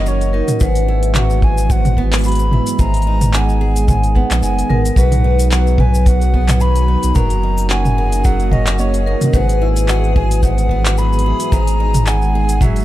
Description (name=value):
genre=folktronica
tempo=110 BPM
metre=4/4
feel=swing 56% on 16ths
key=unclear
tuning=A4 = 442 Hz
part: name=bright baroque flute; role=melody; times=0.0-12.8 s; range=C#5 to B5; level=-23 LUFS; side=left 1 dB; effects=tape echo
part: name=vibraphone with medium mallets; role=second line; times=0.0-12.6 s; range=A#4 to F#5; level=-25 LUFS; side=left 3 dB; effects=tape echo
part: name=warbly tape-like pad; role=sustained chords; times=0.0-12.8 s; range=C#3 to G#4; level=-24 LUFS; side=right 3 dB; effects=chorus, built-in reverb
part: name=picked acoustic archtop guitar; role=arpeggios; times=0.0-12.8 s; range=G#2 to B4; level=-24 LUFS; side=right 1 dB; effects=none
part: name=warm sub bass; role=bass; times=0.0-12.8 s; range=F#1 to B1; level=-15 LUFS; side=equal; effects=none
part: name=organic electronic drum kit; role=drums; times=0.1-12.8 s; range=handclaps, hi-hat, shaker, toms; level=-20 LUFS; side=equal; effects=overdrive
part: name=kick drum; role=drums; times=0.6-12.7 s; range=none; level=-15 LUFS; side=equal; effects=none
part: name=backwards swelling texture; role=texture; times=6.2-12.8 s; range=G#4 to G#5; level=-32 LUFS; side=equal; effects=built-in reverb
room=small room ambience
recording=none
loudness=-12 LUFS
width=side -14 dB against mid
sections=0.0-12.8 A section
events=none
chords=0.0 F#6; 0.6 Eadd9/G#; 2.8 G#m; 5.0 B; 7.2 F#6; 9.3 Eadd9/G#; 11.5 G#m